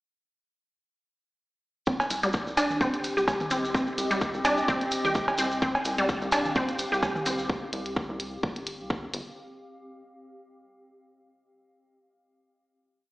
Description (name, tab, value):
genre	minimal techno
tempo	128 BPM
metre	4/4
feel	swing 55% on 16ths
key	C minor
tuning	A4 = 443 Hz
part	resonant blip pluck	riff	1.9-7.3 s	G3 to G4	-28 LUFS	equal	chorus, sidechain pumping, dub echo
part	electronic kick drum	drums	1.9-9.0 s	none	-29 LUFS	equal	none
part	maracas	percussion	1.9-7.5 s	none	-37 LUFS	right 1 dB	none
part	granular cloud pad	texture	2.7-7.5 s	C4 to F5	-34 LUFS	equal	built-in reverb, sidechain pumping
part	electronic cowbell and toms	percussion	2.0-7.2 s	none	-30 LUFS	equal	dub echo
part	rubbery square bass	bass	2.1-9.2 s	G1 to C2	-39 LUFS	equal	tube saturation, sidechain pumping
part	electronic hi-hat	drums	2.1-9.2 s	none	-36 LUFS	equal	none
part	swarming drone	texture	6.2-7.5 s	G4	-40 LUFS	right 1 dB	built-in reverb, sidechain pumping
room	wet lush hall reverb, RT60 1.7 s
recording	played on a big sound system in a bare room, stone room reverb, AM radio sound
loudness	-25 LUFS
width	side -19 dB against mid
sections	1.9-9.4 groove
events	none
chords	1.9 Cm